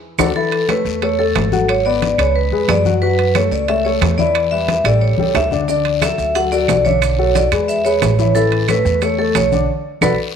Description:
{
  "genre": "Afro-Cuban jazz",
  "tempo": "180 BPM",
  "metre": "4/4",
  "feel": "straight",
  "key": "A major",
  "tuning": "A4 = 440 Hz",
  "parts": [
    { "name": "warm baby grand piano", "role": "accompaniment", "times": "0.2-10.1 s", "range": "D3 to F#5", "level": "-20 LUFS", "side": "left 8 dB", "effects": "none" },
    { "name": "upright bass", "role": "bass", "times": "0.2-10.1 s", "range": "G#1 to F#2", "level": "-20 LUFS", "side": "right 2 dB", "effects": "none" },
    { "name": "claves", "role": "percussion", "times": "0.2-10.1 s", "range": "none", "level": "-24 LUFS", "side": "right 12 dB", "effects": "none" },
    { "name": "congas", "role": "percussion", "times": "0.2-10.1 s", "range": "none", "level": "-24 LUFS", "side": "left 7 dB", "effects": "none" },
    { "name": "guiro", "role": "percussion", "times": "0.2-10.1 s", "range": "none", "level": "-33 LUFS", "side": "left 10 dB", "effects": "none" },
    { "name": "maracas", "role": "percussion", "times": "0.2-0.3, 5.7-10.1 s", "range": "none", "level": "-33 LUFS", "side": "right 13 dB", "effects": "none" },
    { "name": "timbales", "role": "percussion", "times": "0.2-10.1 s", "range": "none", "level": "-24 LUFS", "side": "right 13 dB", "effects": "none" },
    { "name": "vibraphone with medium hard mallets", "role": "melody", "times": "0.4-10.1 s", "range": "A4 to F#5", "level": "-17 LUFS", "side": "right 2 dB", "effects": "none" }
  ],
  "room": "moderate echo chamber reverb, RT60 1.3 s, small room ambience",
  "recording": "1960s-style stereo with parts hard left and right",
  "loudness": "-13 LUFS",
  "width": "side -7 dB against mid",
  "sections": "0.4-10.4 A section",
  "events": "drum fill 0.0-0.4, 5.2-5.7, 10.0-10.4; band accent 0.0-0.4, 9.7-10.4",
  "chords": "0.4 A69; 1.7 G#m7b5; 2.4 C#7; 3.0 F#m7; 4.4 Em; 5.0 A7; 5.7 D69; 7.0 Bm7; 7.7 E6; 8.4 Aadd9; 9.7 B7(no3)",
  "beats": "0.02 | 0.35 0.69 1.02 1.35 | 1.69 2.02 2.35 2.69 | 3.02 3.35 3.69 4.02 | 4.35 4.69 5.02 5.35 | 5.69 6.02 6.35 6.68 | 7.02 7.35 7.68 8.02 | 8.35 8.69 9.02 9.35 | 9.68 10.02"
}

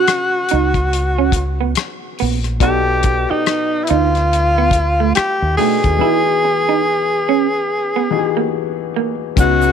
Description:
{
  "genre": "R&B, neo-soul",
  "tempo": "71 BPM",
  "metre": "4/4",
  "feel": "swing 59% on 16ths",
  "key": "unclear",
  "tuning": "A4 = 436 Hz",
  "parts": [
    { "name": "breathy tenor saxophone", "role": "melody", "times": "0.0-9.7 s", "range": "D#4 to G#4", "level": "-17 LUFS", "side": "equal", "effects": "none" },
    { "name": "electric guitar through a small old amp", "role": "second line", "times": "0.0-9.1 s", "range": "A3 to G4", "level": "-21 LUFS", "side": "right 15 dB", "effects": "none" },
    { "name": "clear grand piano", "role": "accompaniment", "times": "0.0-9.7 s", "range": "B2 to G5", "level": "-23 LUFS", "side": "left 14 dB", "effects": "none" },
    { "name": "cloth-damped thuddy drum kit", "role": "drums", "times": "0.1-9.6 s", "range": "hi-hat, kick drum, rim click", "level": "-20 LUFS", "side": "left 2 dB", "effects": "none" },
    { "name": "deep dub fingered electric bass", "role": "bass", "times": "0.5-9.7 s", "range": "A#1 to D#2", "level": "-18 LUFS", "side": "equal", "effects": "none" },
    { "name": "string machine, full ensemble", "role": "sustained chords", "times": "9.4-9.7 s", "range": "C#3 to F#4", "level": "-21 LUFS", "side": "left 2 dB", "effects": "ensemble chorus" },
    { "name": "tube shaker", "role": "percussion", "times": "9.4-9.7 s", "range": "none", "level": "-34 LUFS", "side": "right 21 dB", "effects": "none" }
  ],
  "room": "light reverb, studio reverb",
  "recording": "1960s-style stereo with parts hard left and right",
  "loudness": "-14 LUFS",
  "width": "side -7 dB against mid",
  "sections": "0.0-9.4 A section",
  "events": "none",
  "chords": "0.0 C#7sus4; 2.6 B7alt; 6.0 Emaj7",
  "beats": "0.07 0.92 1.76 | 2.61 3.46 4.30 5.14 | 5.99 6.84 7.68 8.53 | 9.37"
}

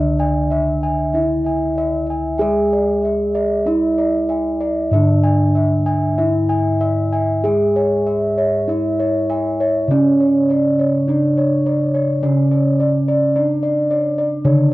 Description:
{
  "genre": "Javanese gamelan",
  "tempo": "48-56 BPM",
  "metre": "4/4",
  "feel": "straight",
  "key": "unclear",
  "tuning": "A4 = 440 Hz",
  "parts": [
    { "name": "gamelan-type bronze metallophone", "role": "melody", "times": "0.0-14.7 s", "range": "C#4 to G#4-30c", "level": "-19 LUFS", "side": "right 1 dB", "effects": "cassette tape" },
    { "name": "gamelan-type bronze metallophone", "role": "accompaniment", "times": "0.0-14.7 s", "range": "C#3 to G#3-30c", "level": "-23 LUFS", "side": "left 1 dB", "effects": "cassette tape" },
    { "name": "gamelan-type bossed gongs", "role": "arpeggios", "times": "0.0-14.7 s", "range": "C#5 to G#5-30c", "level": "-22 LUFS", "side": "left 2 dB", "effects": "cassette tape" },
    { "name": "gamelan-type bronze metallophone", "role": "arpeggios", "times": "0.0-14.7 s", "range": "C#5 to G#5-30c", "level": "-25 LUFS", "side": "right 2 dB", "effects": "cassette tape" },
    { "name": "gamelan-type bossed gongs", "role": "bass", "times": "0.0-14.7 s", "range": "C#2 to G#4-30c", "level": "-22 LUFS", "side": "equal", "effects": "none" }
  ],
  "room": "light reverb, small room ambience",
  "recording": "home recording on cassette",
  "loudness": "-15 LUFS",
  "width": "side -18 dB against mid",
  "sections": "0.0-14.7 A section",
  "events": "none",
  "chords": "none",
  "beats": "1.14 | 2.40 3.66 4.92 6.18 | 7.45 8.69 9.90 11.08 | 12.23 13.36 14.45"
}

